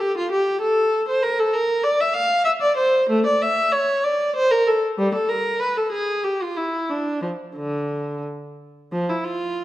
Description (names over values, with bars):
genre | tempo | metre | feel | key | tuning
classical, baroque-style suite movement for unaccompanied viola | 85-100 BPM | 3/4 | rubato | D minor | A4 = 440 Hz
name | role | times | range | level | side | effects
warm viola | solo | 0.0-9.6 s | D3 to F5 | -19 LUFS | equal | none
room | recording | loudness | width
wet recital hall reverb, RT60 1.6 s | dark, warm production | -19 LUFS | side -15 dB against mid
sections
0.0-8.9 A section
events
none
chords
none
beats
0.01 0.62 | 1.23 1.84 2.44 | 3.08 3.72 4.34 | 4.96 5.59 6.23 | 6.89 7.57 8.23 | 8.93 9.59